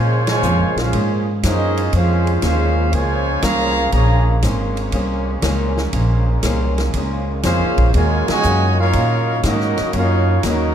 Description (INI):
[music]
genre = jazz, big band swing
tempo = 120 BPM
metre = 4/4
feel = swing 69% on 8ths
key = Bb minor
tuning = A4 = 440 Hz
[part]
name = clear trumpet section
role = melody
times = 0.0-4.4, 7.4-10.7 s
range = Db4 to Bb5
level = -20 LUFS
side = equal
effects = none
[part]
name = clear trombone section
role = second line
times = 0.0-4.4, 7.4-10.7 s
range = Bb2 to F4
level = -23 LUFS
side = right 4 dB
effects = none
[part]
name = picked swing-style acoustic guitar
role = accompaniment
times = 0.0-10.7 s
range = Eb3 to C5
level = -26 LUFS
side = left 2 dB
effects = none
[part]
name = bright trombone section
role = sustained chords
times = 0.0-10.7 s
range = Bb2 to Eb4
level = -30 LUFS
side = right 1 dB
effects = none
[part]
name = upright bass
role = bass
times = 0.0-10.7 s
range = Ab1 to Bb2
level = -18 LUFS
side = equal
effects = none
[part]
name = swinging big-band drum kit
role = drums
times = 0.3-10.6 s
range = hi-hat, kick drum, ride cymbal, snare drum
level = -25 LUFS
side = equal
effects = none
[sound]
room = light reverb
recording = none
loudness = -15 LUFS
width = side -9 dB against mid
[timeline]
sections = 0.0-10.7 A section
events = band accent 0.2, 8.2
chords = 0.0 Bbm9; 7.9 Ebm7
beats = 0.43 0.94 1.44 | 1.94 2.44 2.94 3.44 | 3.94 4.44 4.94 5.44 | 5.94 6.44 6.94 7.44 | 7.94 8.44 8.94 9.44 | 9.94 10.44